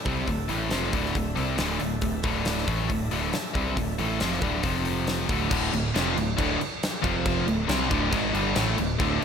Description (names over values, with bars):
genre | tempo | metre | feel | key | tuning
hard rock | 138 BPM | 4/4 | straight | unclear | A4 = 440 Hz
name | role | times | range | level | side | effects
overdriven tonewheel organ | sustained chords | 0.0-5.5, 9.0-9.2 s | F3 to E5 | -39 LUFS | equal | none
sludgy distorted guitar | riff | 0.0-9.2 s | D2 to C4 | -30 LUFS | right 10 dB | overdrive
tight distorted guitar | riff | 0.1-9.2 s | D2 to C4 | -28 LUFS | left 10 dB | distortion
modern bright picked electric bass | bass | 0.1-9.2 s | D1 to C2 | -32 LUFS | equal | none
huge arena drum kit | drums | 0.1-9.2 s | crash cymbal, hi-hat, kick drum, snare drum | -29 LUFS | equal | none
sludgy distorted guitar | riff | 5.5-9.2 s | D2 to C4 | -31 LUFS | right 1 dB | overdrive
room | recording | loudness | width
light reverb, small room ambience | none | -23 LUFS | side -7 dB against mid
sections
0.0-5.5 A section; 5.5-9.2 B section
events
none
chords
0.0 D5; 4.6 F5; 5.3 D5; 7.0 F5; 7.5 D5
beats
| 0.28 0.72 1.15 1.59 | 2.03 2.46 2.90 3.33 | 3.77 4.21 4.64 5.08 | 5.51 5.95 6.38 6.82 | 7.25 7.68 8.12 8.55 | 8.99